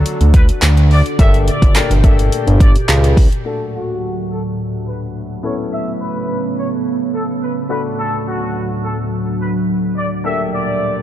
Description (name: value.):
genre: dance-pop.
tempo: 106 BPM.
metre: 4/4.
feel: straight.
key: D major.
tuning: A4 = 439 Hz.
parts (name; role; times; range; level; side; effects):
clear concert grand piano; accompaniment; 0.0-11.0 s; F#3 to Bb4; -25 LUFS; left 6 dB; sidechain pumping, low-pass filter.
glassy FM pad; sustained chords; 0.0-11.0 s; D2 to A4; -21 LUFS; right 1 dB; ensemble chorus, built-in reverb, sidechain pumping, low-pass filter.
fat analog bass; bass; 0.0-3.3 s; G1 to D2; -12 LUFS; equal; sidechain pumping.
deep house drum kit; drums; 0.1-3.4 s; handclaps, hi-hat, kick drum, snare drum; -12 LUFS; equal; none.
warm horn section; melody; 0.3-10.9 s; F#4 to E5; -24 LUFS; left 1 dB; sidechain pumping, low-pass filter.
group handclap; percussion; 0.6-3.0 s; none; -26 LUFS; right 4 dB; none.
room: light reverb.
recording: dark, warm production.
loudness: -13 LUFS.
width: side -12 dB against mid.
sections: 0.0-3.5 A section; 3.5-11.0 B section.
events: drop 0.0-3.5; filter sweep 3.5-11.0.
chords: 0.0 D; 1.2 Gmadd9; 3.5 D; 5.4 Aadd9; 7.7 D; 10.2 Gmadd9.